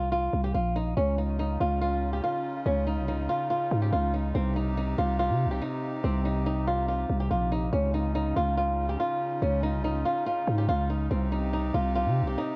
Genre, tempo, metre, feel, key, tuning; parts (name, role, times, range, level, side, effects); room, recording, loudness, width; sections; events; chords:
hip hop; 142 BPM; 4/4; half-time; A4 = 440 Hz
flamenco guitar; melody; 0.0-12.6 s; C4 to G4; -32 LUFS; equal; low-pass filter, tape echo
growling 808-style bass; bass; 0.0-12.4 s; Bb1 to C3; -30 LUFS; equal
hollow soft pad; sustained chords; 1.0-12.6 s; C3 to G4; -37 LUFS; equal; chorus
small room ambience; worn, warbling old tape, cassette tape, warbly pitch drift; -28 LUFS; mono
0.0-7.7 A section; 7.7-12.6 A section
0.0 N.C.; 1.0 Dbadd9; 4.3 Cm; 7.7 Dbadd9; 11.1 Cm